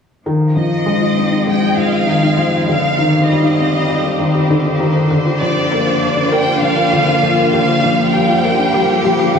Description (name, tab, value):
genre	piano and strings electronica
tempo	99 BPM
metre	4/4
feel	straight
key	F dorian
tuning	A4 = 435 Hz
part	rich string quartet	sustained chords	0.3-9.4 s	D3 to Eb5	-20 LUFS	equal	low-pass filter
part	analog pluck	arpeggios	0.3-9.4 s	D4 to Bb4	-23 LUFS	left 1 dB	none
part	felt-muted upright piano	riff	0.3-9.4 s	D3 to D4	-15 LUFS	left 1 dB	lush chorus, analog delay
part	warm symphonic violin section	melody	0.6-9.3 s	D5 to G5	-17 LUFS	right 1 dB	analog delay
room	wet huge ambient reverb, RT60 8.9 s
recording	dreamy mix soaked in reverb, studio ambience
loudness	-12 LUFS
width	side -6 dB against mid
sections	0.3-9.4 A section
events	build-up 0.3-9.4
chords	0.3 Fm7; 2.7 Cmadd9; 5.1 Gm7